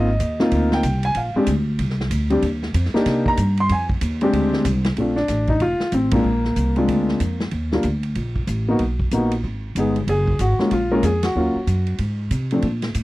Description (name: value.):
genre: jazz piano trio.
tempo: 188 BPM.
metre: 4/4.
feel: swing 62% on 8ths.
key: unclear.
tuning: A4 = 440 Hz.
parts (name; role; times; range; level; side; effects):
warm grand piano; melody; 0.0-12.6 s; F3 to C6; -20 LUFS; left 1 dB; none.
upright bass; bass; 0.0-13.0 s; F1 to C3; -22 LUFS; equal; none.
swinging big-band drum kit; drums; 0.2-13.0 s; hi-hat, kick drum, ride cymbal, snare drum; -28 LUFS; equal; none.
room: light reverb.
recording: dry, close 1970s-style studio recording.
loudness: -18 LUFS.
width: side -18 dB against mid.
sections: 0.0-5.0 A section; 5.0-13.0 B section.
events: grand piano solo 0.0-5.0; band accent 6.1, 11.2.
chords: 0.0 Ab6; 1.2 Bb69; 2.4 Ebsus2; 3.1 Cm9; 3.7 Fm7; 4.3 Abmaj7#11; 5.0 Bbmaj9; 6.3 Bb7; 7.5 Ebmaj7(no3); 8.8 Bmaj7; 9.4 Abmmaj7; 10.1 Gbmaj7; 11.4 Ebm7; 12.0 Ab.